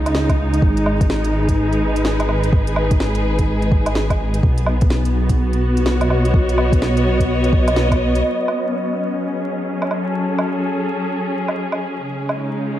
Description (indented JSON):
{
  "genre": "future garage",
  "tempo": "126 BPM",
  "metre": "4/4",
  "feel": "swing 62% on 16ths",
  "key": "F# dorian",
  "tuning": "A4 = 440 Hz",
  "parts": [
    { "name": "clear studio string section", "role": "sustained chords", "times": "0.0-12.8 s", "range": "C#3 to D#5", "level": "-20 LUFS", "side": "equal", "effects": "sidechain pumping, low-pass filter" },
    { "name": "dark detuned saw bass", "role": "bass", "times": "0.0-8.2 s", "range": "G#1 to C#2", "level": "-19 LUFS", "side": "equal", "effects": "none" },
    { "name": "organic electronic drum kit", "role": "drums", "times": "0.1-12.4 s", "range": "hi-hat, snare drum, woodblock", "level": "-25 LUFS", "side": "right 1 dB", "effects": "studio reverb" },
    { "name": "electronic kick drum", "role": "drums", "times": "0.3-8.0 s", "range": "none", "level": "-17 LUFS", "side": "equal", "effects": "studio reverb" }
  ],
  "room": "moderate lush hall reverb, RT60 2.5 s",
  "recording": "dreamy mix soaked in reverb, vinyl crackle",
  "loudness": "-16 LUFS",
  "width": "side -12 dB against mid",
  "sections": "0.0-8.2 A section; 8.2-12.8 B section",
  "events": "filter sweep on string section 8.2-12.8",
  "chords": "0.0 C#; 0.6 G#m; 4.4 B; 8.2 F#m; 12.1 C#"
}